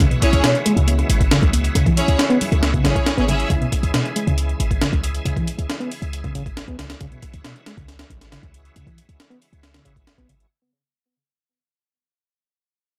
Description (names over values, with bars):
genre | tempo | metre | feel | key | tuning
breakbeat, breaks | 137 BPM | 4/4 | straight | C# minor | A4 = 444 Hz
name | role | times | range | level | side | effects
bright tonewheel organ | sustained chords | 0.0-10.5 s | C#3 to G#4 | -32 LUFS | equal | chorus vibrato, slow rotary speaker, sidechain pumping
reed electric piano | riff | 0.0-10.3 s | B2 to B3 | -24 LUFS | equal | fast tremolo, vintage 12-bit sampler grit, analog delay
warm 808-style bass | bass | 0.0-10.5 s | G#1 to C#2 | -23 LUFS | equal | tube saturation
breakbeat sampler-style drum kit | drums | 0.0-10.3 s | hi-hat, kick drum, snare drum | -23 LUFS | equal | none
electronic hi-hat | drums | 0.0-10.5 s | none | -35 LUFS | equal | overdrive
bright studio string section | stabs | 0.2-3.5 s | C#4 to E5 | -25 LUFS | equal | analog delay
bongos and congas | percussion | 0.2-3.4 s | none | -31 LUFS | equal | none
room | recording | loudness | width
little or no reverb | dry, gritty hardware recording | -19 LUFS | mono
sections
0.0-10.5 A section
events
fade-out 0.0-10.5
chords
0.0 C#m